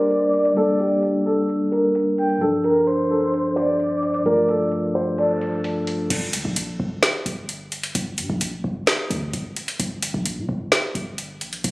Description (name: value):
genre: hip hop, trap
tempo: 130 BPM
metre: 4/4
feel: half-time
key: G minor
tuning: A4 = 441 Hz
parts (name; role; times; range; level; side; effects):
- dark concert grand piano; melody; 0.0-6.1 s; G4 to D5; -22 LUFS; equal; ping-pong delay
- breathy flute-like synth lead; second line; 0.0-5.6 s; A4 to G5; -24 LUFS; equal; chorus, ping-pong delay
- mellow tine electric piano; accompaniment; 0.0-6.1 s; G2 to F4; -23 LUFS; equal; medium stereo tremolo
- trap drum kit; drums; 0.1-11.7 s; crash cymbal, hi-hat, snare drum; -22 LUFS; equal; none
- short 808-style bass; bass; 6.1-11.7 s; G1 to Bb2; -28 LUFS; equal; none
room: light reverb, digital ambience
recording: recorded on a phone in the room, studio reverb, compression, low-pass filter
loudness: -19 LUFS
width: side -20 dB against mid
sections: 0.0-6.1 A section; 6.1-11.7 B section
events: filter sweep 0.0-6.1; break 5.2-6.1, 6.1-11.7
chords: 0.0 Gm; 2.4 Dm/G; 6.1 Gm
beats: 0.10 | 0.56 1.03 1.49 1.95 | 2.41 2.87 3.33 3.80 | 4.26 4.72 5.18 5.64 | 6.10 6.57 7.03 7.49 | 7.95 8.41 8.87 9.34 | 9.80 10.26 10.72 11.18 | 11.64